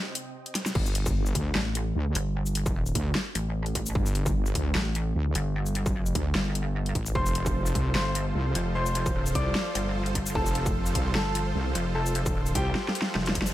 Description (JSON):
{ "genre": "heavy wobble dubstep", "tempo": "150 BPM", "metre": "4/4", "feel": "swing 54% on 16ths, half-time", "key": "unclear", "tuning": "A4 = 439 Hz", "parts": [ { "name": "supersaw chords", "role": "sustained chords", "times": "0.0-0.7, 7.2-13.5 s", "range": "C3 to G5", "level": "-35 LUFS", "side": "right 2 dB", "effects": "sidechain pumping, low-pass filter" }, { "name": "dubstep drum kit", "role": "drums", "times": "0.2-13.5 s", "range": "crash cymbal, handclaps, hi-hat, shaker, snare drum", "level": "-31 LUFS", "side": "left 1 dB", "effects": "studio reverb" }, { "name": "wobble bass", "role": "bass", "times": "0.8-12.7 s", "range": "F1 to D2", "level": "-27 LUFS", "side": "equal", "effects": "chorus, overdrive" }, { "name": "electronic kick drum", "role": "drums", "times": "0.8-13.4 s", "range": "none", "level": "-30 LUFS", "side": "equal", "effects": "distortion, studio reverb" }, { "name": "pulsing pluck wobble bass", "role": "bass", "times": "1.6-13.5 s", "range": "F1 to A1", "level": "-28 LUFS", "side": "equal", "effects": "chorus, overdrive" }, { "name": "clear concert grand piano", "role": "melody", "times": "7.2-13.1 s", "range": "G4 to D6", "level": "-33 LUFS", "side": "left 1 dB", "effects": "ping-pong delay" } ], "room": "digital ambience", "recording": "none", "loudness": "-25 LUFS", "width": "side -14 dB against mid", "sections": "0.8-13.5 A section", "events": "break 0.0-0.8; drum fill 0.6, 12.8-13.5; drop 0.8-13.5", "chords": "0.0 Cm; 0.8 G5; 7.2 F", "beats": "0.35 | 0.75 1.15 1.55 1.95 | 2.35 2.75 3.15 3.55 | 3.95 4.35 4.75 5.15 | 5.55 5.95 6.35 6.75 | 7.15 7.55 7.95 8.35 | 8.75 9.15 9.55 9.95 | 10.35 10.75 11.15 11.55 | 11.95 12.35 12.75 13.15" }